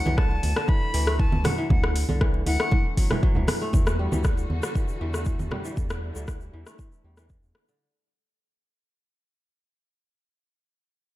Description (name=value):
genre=afro house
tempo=118 BPM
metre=4/4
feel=straight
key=E minor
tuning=A4 = 435 Hz
part: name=breathy bright jazz flute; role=melody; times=0.0-2.9 s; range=F#5 to B5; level=-32 LUFS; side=left 1 dB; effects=ping-pong delay
part: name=kora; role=arpeggios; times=0.0-8.7 s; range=D3 to A3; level=-32 LUFS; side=left 1 dB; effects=sidechain pumping, ping-pong delay
part: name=round analog bass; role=bass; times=0.1-7.5 s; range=A1 to E2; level=-28 LUFS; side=equal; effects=tube saturation, sidechain pumping
part: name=congas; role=percussion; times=0.1-5.6 s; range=none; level=-30 LUFS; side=right 2 dB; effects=none
part: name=deep house drum kit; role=drums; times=0.2-7.7 s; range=hi-hat, rim click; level=-30 LUFS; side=left 1 dB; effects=overdrive
part: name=electronic kick drum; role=drums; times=0.2-7.4 s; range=none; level=-23 LUFS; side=equal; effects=none
part: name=clear symphonic string section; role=sustained chords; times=3.7-7.8 s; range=D3 to F#4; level=-40 LUFS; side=left 2 dB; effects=sidechain pumping, low-pass filter
part: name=egg shaker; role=percussion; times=3.7-7.8 s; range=none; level=-45 LUFS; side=left 4 dB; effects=none
room=small room ambience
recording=dark, warm production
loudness=-22 LUFS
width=side -16 dB against mid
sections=0.0-3.7 A section; 3.7-7.8 B section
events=fade-out 3.7-7.8; filter sweep on string section 3.7-7.8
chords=0.0 D7; 3.7 Em9